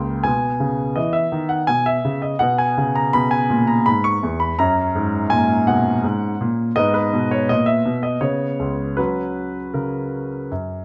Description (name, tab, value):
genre	classical-period piano sonatina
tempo	82 BPM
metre	3/4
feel	straight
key	unclear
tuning	A4 = 439 Hz
part	clear grand piano	solo	0.0-10.8 s	Db2 to C#6	-20 LUFS	equal	none
room	light reverb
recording	close, detailed microphones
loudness	-20 LUFS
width	mono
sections	0.0-10.8 A section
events	none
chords	0.3 G#m/B; 2.4 E6; 4.6 F#; 6.8 G#m; 8.2 Bsus2/C#; 9.0 F#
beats	| 0.26 0.97 1.69 | 2.42 3.14 3.87 | 4.59 5.32 6.04 | 6.77 7.50 8.23 | 8.98 9.75 10.51